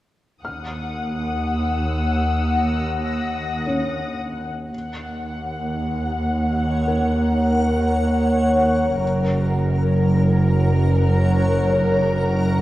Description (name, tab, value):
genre	cinematic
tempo	56 BPM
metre	4/4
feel	straight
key	Eb minor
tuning	A4 = 440 Hz
part	muted symphonic violin section	melody	0.4-12.6 s	Bb4 to Gb5	-27 LUFS	left 3 dB	none
part	muted symphonic cello section	bass	0.4-12.6 s	Eb2 to Gb2	-23 LUFS	right 1 dB	none
part	muted symphonic double bass section	bass	0.4-12.6 s	Gb1 to Eb2	-22 LUFS	right 1 dB	none
part	muted symphonic violin section	texture	0.4-4.2 s	Eb6 to Bb6	-34 LUFS	left 3 dB	none
part	felt-muted upright piano	texture	0.5-12.6 s	Db4 to F6	-29 LUFS	left 2 dB	none
part	backwards swelling texture	sustained chords	6.7-12.6 s	Bb4 to Gb5	-24 LUFS	left 1 dB	built-in reverb
room	moderate scoring stage reverb, RT60 2.0 s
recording	worn, warbling old tape, cassette tape, warbly pitch drift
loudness	-18 LUFS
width	side -15 dB against mid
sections	0.4-4.7 A section; 4.7-12.6 B section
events	none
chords	0.4 Ebm7; 9.0 Gb